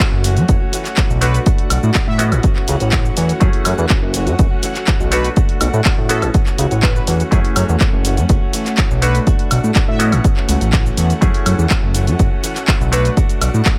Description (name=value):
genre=filtered disco house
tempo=123 BPM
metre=4/4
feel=straight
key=F# minor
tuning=A4 = 440 Hz
part: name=clav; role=accompaniment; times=0.0-13.8 s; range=A3 to C#5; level=-28 LUFS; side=equal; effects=phaser, sidechain pumping
part: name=string machine, full ensemble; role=sustained chords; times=0.0-13.8 s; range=A3 to F#5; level=-31 LUFS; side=equal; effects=ensemble chorus, vintage 12-bit sampler grit, sidechain pumping
part: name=direct-recorded clean electric guitar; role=riff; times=0.0-13.8 s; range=E3 to F#4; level=-27 LUFS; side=equal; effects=sidechain pumping
part: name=electronic kick drum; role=drums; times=0.0-13.8 s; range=none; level=-18 LUFS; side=equal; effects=none
part: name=punchy analog drum machine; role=drums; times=0.0-13.8 s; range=handclaps, hi-hat, shaker, woodblock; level=-24 LUFS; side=equal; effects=sidechain pumping on hats, sidechain pumping on cymbals, sidechain pumping on perc
part: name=fat analog bass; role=bass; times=0.1-13.6 s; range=F#1 to A2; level=-18 LUFS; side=equal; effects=sidechain pumping
part: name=analog synth brass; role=melody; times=1.2-13.1 s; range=A4 to E5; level=-28 LUFS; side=equal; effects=chorus, sidechain pumping
room=little or no reverb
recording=none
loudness=-15 LUFS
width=mono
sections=0.0-13.8 A section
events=none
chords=0.0 F#m7; 1.2 Bm7; 2.2 A6; 3.4 F#m7; 5.1 Bm7; 6.1 A6; 7.3 F#m7; 9.0 Bm7; 10.0 A6; 11.2 F#m7; 12.9 Bm7